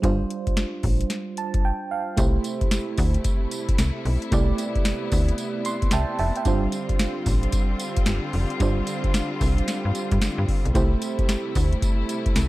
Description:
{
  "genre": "R&B, new jack swing",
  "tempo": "112 BPM",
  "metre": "4/4",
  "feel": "swing 63% on 16ths",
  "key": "C major",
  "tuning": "A4 = 440 Hz",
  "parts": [
    { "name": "FM electric piano with tremolo", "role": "accompaniment", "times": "0.0-12.5 s", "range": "G3 to C6", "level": "-28 LUFS", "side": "right 4 dB", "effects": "none" },
    { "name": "slap-like FM bass", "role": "bass", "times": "0.0-12.5 s", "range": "F1 to G2", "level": "-24 LUFS", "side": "equal", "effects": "none" },
    { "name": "booming analog drum machine", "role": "drums", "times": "0.0-12.5 s", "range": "hi-hat, kick drum, snare drum, tambourine", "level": "-24 LUFS", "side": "equal", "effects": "overdrive" },
    { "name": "rich studio string section", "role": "sustained chords", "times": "2.2-12.5 s", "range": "C3 to F4", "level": "-32 LUFS", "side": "left 3 dB", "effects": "none" }
  ],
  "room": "little or no reverb",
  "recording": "dark, warm production",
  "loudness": "-21 LUFS",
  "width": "side -18 dB against mid",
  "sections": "0.0-2.2 A section; 2.2-12.5 B section",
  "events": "FM electric piano fill 1.1-2.2, 5.4-6.5",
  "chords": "0.0 G7sus4; 2.2 C6"
}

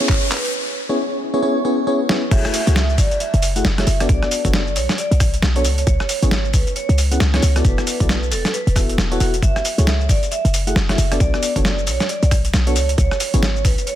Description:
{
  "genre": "UK garage, two-step garage",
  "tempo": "135 BPM",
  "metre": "4/4",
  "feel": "swing 60% on 16ths",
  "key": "F# minor",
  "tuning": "A4 = 440 Hz",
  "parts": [
    { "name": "FM electric piano", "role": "stabs", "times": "0.0-13.4 s", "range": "A3 to F#5", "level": "-23 LUFS", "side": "left 1 dB", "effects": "chorus, dub echo" },
    { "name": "boom bap sampler-style drum kit", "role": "drums", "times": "0.0-14.0 s", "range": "crash cymbal, handclaps, hi-hat, rim click, shaker, snare drum", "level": "-22 LUFS", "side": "equal", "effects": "overdrive" },
    { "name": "riser", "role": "sound effects", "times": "0.0-0.5 s", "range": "none", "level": "-25 LUFS", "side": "left 2 dB", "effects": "none" },
    { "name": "vibraphone with medium mallets", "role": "melody", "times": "0.1-14.0 s", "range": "F#4 to E5", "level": "-25 LUFS", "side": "right 2 dB", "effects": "dub echo" },
    { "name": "electronic kick drum", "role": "drums", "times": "0.1-13.8 s", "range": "none", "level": "-18 LUFS", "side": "equal", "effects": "overdrive" },
    { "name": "short 808-style bass", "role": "bass", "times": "2.3-13.8 s", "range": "E1 to C#2", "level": "-18 LUFS", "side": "equal", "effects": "none" }
  ],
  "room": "light reverb, digital ambience",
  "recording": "dense, heavily limited modern master",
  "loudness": "-15 LUFS",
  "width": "side -12 dB against mid",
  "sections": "0.0-2.3 A section; 2.3-14.0 B section",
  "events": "build-up 0.0-2.3; drum fill 0.0-0.5, 2.1; riser 0.0-0.5; drop 2.3-14.0",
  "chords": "0.0 C#m7; 2.3 F#m7; 4.1 Bm7; 5.6 C#m7; 7.6 E7sus4; 9.4 F#m7; 11.2 Bm7; 12.8 C#5"
}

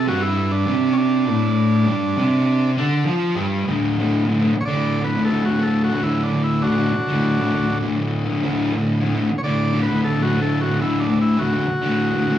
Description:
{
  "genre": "rock",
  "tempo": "101 BPM",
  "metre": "4/4",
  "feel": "straight",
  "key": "D major",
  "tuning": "A4 = 438 Hz",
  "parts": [
    { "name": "overdriven combo organ", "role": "melody", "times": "0.0-12.4 s", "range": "C#4 to D5", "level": "-24 LUFS", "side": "equal", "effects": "slapback echo" },
    { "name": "fuzz guitar", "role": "riff", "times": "0.0-12.4 s", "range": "D2 to F4", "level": "-18 LUFS", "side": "equal", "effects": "distortion, slapback echo" }
  ],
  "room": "light reverb",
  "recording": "live gig heard through the venue's PA, club ambience",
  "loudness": "-17 LUFS",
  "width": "side -11 dB against mid",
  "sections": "0.0-3.7 A section; 3.7-12.4 B section",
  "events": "none",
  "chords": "0.0 G5; 3.7 D5"
}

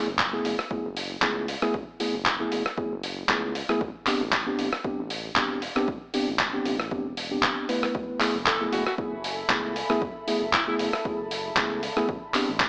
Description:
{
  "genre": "deep house",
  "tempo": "116 BPM",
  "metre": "4/4",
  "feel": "swing 54% on 16ths",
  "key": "unclear",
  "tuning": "A4 = 443 Hz",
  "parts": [
    { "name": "mellow tine electric piano", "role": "stabs", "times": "0.0-12.5 s", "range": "A3 to B4", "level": "-31 LUFS", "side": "equal", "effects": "sidechain pumping, tape echo" },
    { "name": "smooth synth bass", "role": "bass", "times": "0.1-12.7 s", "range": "E1 to C#2", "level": "-40 LUFS", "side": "equal", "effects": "tube saturation, sidechain pumping" },
    { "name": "dusty soul sampler-style drum kit", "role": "drums", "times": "0.2-12.7 s", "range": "handclaps, hi-hat, rim click", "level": "-28 LUFS", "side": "equal", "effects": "overdrive, small room ambience" },
    { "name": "electronic kick drum", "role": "drums", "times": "0.2-12.7 s", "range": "none", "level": "-38 LUFS", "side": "equal", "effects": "small room ambience" },
    { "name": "warbly tape-like pad", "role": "sustained chords", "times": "8.4-12.7 s", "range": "A4 to C6", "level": "-37 LUFS", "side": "equal", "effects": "chorus, built-in reverb, vintage 12-bit sampler grit, sidechain pumping" },
    { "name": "bright alto saxophone", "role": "melody", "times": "8.5-10.8 s", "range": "E4 to A4", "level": "-34 LUFS", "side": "equal", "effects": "tape echo" }
  ],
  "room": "light reverb, digital ambience",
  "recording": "dry, gritty hardware recording, AM radio sound",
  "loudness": "-27 LUFS",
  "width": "mono",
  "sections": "0.0-12.7 A section",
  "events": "none",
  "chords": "0.0 F#m11; 3.8 Am11; 7.9 F#m11; 12.1 Am11"
}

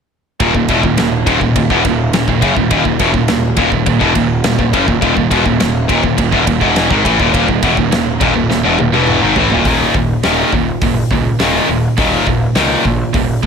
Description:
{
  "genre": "heavy metal",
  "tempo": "104 BPM",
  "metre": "4/4",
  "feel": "straight",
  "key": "unclear",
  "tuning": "A4 = 439 Hz",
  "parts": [
    { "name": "distorted electric guitar", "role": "riff", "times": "0.4-13.5 s", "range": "Eb2 to Fb3", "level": "-15 LUFS", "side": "left 11 dB", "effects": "overdrive" },
    { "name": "scooped high-gain guitar", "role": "riff", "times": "0.4-13.5 s", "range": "Eb2 to Fb3", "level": "-16 LUFS", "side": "right 10 dB", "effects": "distortion" },
    { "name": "fuzz picked electric bass", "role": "bass", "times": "0.4-13.5 s", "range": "Eb1 to Db2", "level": "-19 LUFS", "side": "equal", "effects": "overdrive" },
    { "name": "big rock drum kit", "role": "drums", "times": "0.4-13.5 s", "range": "hi-hat, kick drum, ride cymbal, snare drum, toms", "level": "-18 LUFS", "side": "equal", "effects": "none" }
  ],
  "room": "small room ambience",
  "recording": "none",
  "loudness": "-11 LUFS",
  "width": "side -6 dB against mid",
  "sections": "0.4-9.7 A section; 9.7-13.5 B section",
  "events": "drum fill 8.5-9.7",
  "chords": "0.4 Eb5"
}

